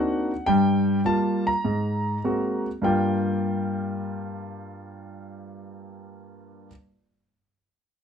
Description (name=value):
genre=solo jazz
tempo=102 BPM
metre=4/4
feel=swing 69% on 8ths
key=G minor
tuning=A4 = 441 Hz
part: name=warm concert grand piano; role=solo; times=0.0-6.7 s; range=G2 to Bb5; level=-23 LUFS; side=equal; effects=none
room=moderate club reverb, RT60 0.6 s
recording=close, detailed microphones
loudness=-22 LUFS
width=side -7 dB against mid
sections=0.0-2.8 A section; 2.8-5.2 B section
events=none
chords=0.5 Gm7; 1.6 Ab9; 2.8 Gm7